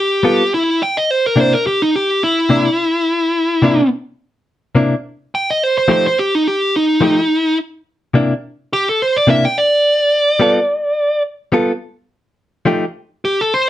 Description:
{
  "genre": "blues",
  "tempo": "106 BPM",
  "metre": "4/4",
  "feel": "swing 54% on 16ths",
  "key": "C mixolydian",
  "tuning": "A4 = 440 Hz",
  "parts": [
    { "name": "dark smooth lead guitar", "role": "melody", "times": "0.0-13.7 s", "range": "Eb4 to G5", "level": "-14 LUFS", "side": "equal", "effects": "overdrive" },
    { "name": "direct-recorded clean electric guitar", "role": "stabs", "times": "0.2-12.8 s", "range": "C3 to A4", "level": "-14 LUFS", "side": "left 2 dB", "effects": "none" }
  ],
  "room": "moderate studio ambience, RT60 0.5 s",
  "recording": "band playing live in one room",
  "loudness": "-13 LUFS",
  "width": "side -13 dB against mid",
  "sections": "0.8-13.7 A section",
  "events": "none",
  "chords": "0.0 G9; 0.8 C9; 5.3 F9; 7.6 C9; 9.8 G9; 12.1 F9",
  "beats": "0.24 | 0.81 1.37 1.94 2.50 | 3.07 3.63 4.20 4.76 | 5.33 5.89 6.46 7.02 | 7.59 8.15 8.72 9.28 | 9.85 10.41 10.97 11.54 | 12.10 12.66 13.23"
}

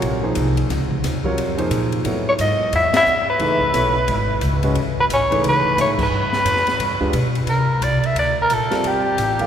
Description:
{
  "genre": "modal jazz",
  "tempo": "177 BPM",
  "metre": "4/4",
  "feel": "swing 63% on 8ths",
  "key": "unclear",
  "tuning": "A4 = 440 Hz",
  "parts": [
    { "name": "warm grand piano", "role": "accompaniment", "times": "0.0-9.5 s", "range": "C3 to F5", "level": "-24 LUFS", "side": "right 1 dB", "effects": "none" },
    { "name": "upright bass", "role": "bass", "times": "0.0-9.5 s", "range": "G1 to C3", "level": "-22 LUFS", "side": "equal", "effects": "none" },
    { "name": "open jazz drum kit", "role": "drums", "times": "0.0-9.4 s", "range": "crash cymbal, hi-hat, kick drum, ride cymbal, snare drum", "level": "-28 LUFS", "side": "left 3 dB", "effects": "none" },
    { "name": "growling soprano saxophone", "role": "melody", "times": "2.3-9.5 s", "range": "G4 to E5", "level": "-18 LUFS", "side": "equal", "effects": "none" }
  ],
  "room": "wet cathedral reverb, RT60 5.2 s",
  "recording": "recorded in a church or concert hall",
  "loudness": "-16 LUFS",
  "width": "side -9 dB against mid",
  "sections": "0.0-7.5 A section; 7.5-9.5 B section",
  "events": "band accent 2.9, 5.9",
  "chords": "0.0 Dbmaj9; 2.0 Amaj9; 6.1 G7; 7.5 C9sus4",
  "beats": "0.01 0.35 | 0.69 1.03 1.37 1.71 | 2.05 2.38 2.72 3.06 | 3.40 3.74 4.08 4.42 | 4.76 5.10 5.44 5.78 | 6.12 6.46 6.79 7.13 | 7.47 7.81 8.15 8.49 | 8.83 9.17"
}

